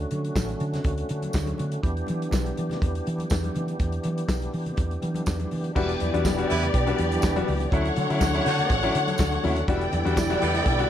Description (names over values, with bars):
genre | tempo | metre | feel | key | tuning
disco | 122 BPM | 4/4 | straight | E dorian | A4 = 440 Hz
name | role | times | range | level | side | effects
overdriven tonewheel organ | sustained chords | 0.0-10.9 s | D3 to C#5 | -31 LUFS | right 1 dB | chorus vibrato, slow rotary speaker
hollow-body short-scale fingered electric bass | bass | 0.0-10.8 s | E1 to E3 | -28 LUFS | equal | none
warm soul drum kit | drums | 0.1-10.9 s | crash cymbal, handclaps, hi-hat, kick drum, snare drum | -28 LUFS | equal | none
congas | percussion | 0.1-10.8 s | none | -36 LUFS | left 4 dB | none
tambourine | percussion | 0.4-10.3 s | none | -39 LUFS | right 7 dB | none
warm studio string section | second line | 5.8-10.9 s | B3 to G5 | -27 LUFS | left 1 dB | none
clear concert grand piano | accompaniment | 5.8-10.9 s | D3 to F#4 | -28 LUFS | left 4 dB | none
clear horn section | stabs | 6.5-10.7 s | G3 to D5 | -29 LUFS | right 2 dB | none
room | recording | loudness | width
studio reverb | dark, warm production | -22 LUFS | side -10 dB against mid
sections
0.0-5.8 A section; 5.8-10.9 B section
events
none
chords
0.0 Dmaj7; 1.8 Em7; 7.7 Dmaj7; 9.7 Em7